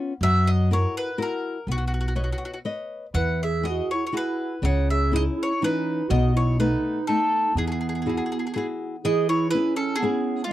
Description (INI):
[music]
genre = italian folk, Italian serenade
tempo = 123 BPM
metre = 3/4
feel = rubato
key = E major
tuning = A4 = 440 Hz
[part]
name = flamenco guitar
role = accompaniment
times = 0.0-10.4 s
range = B2 to D#5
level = -27 LUFS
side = left 3 dB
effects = none
[part]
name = bowl-back mandolin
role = melody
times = 0.2-10.5 s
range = E#4 to F#5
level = -28 LUFS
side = left 1 dB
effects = none
[part]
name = upright bass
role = bass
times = 0.2-8.2 s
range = B1 to F#2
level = -24 LUFS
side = equal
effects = none
[part]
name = dark clarinet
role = second line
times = 3.2-10.5 s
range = G#3 to C#5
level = -26 LUFS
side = right 6 dB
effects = tape echo
[sound]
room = light reverb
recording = dry, close 1970s-style studio recording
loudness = -22 LUFS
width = side -13 dB against mid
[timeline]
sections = 0.0-9.0 A section; 9.0-10.5 A section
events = none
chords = 0.2 F#7; 1.7 Badd9; 3.2 Eadd9; 4.6 C#madd9; 6.1 B7; 7.6 Eadd9; 9.0 E6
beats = | 0.22 0.70 1.18 | 1.67 2.16 2.65 | 3.15 3.65 4.15 | 4.64 5.13 5.62 | 6.11 6.59 7.07 | 7.56 8.04 8.54 | 9.04 9.53 10.02 | 10.50